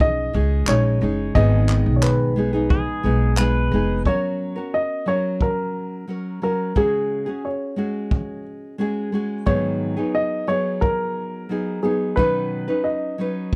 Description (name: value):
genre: acoustic pop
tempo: 89 BPM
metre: 4/4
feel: straight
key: F# major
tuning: A4 = 440 Hz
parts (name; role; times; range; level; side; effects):
- warm upright piano; melody; 0.0-13.6 s; G#4 to D#5; -26 LUFS; equal; slapback echo
- nylon-string guitar; accompaniment; 0.0-13.6 s; G#2 to B4; -26 LUFS; equal; none
- upright bass; bass; 0.0-4.0 s; E#1 to C#2; -22 LUFS; equal; none
- jazz brush drum kit; drums; 0.0-13.6 s; handclaps, kick drum; -24 LUFS; equal; none
- pedal steel guitar; second line; 2.7-4.0 s; G#4 to B4; -29 LUFS; equal; none
room: little or no reverb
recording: none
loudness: -22 LUFS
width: mono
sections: 0.0-4.1 A section; 4.1-13.6 B section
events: none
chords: 0.0 C#sus2; 1.4 G#m; 4.1 F#; 6.8 C#sus4; 9.5 G#m7; 12.2 Badd9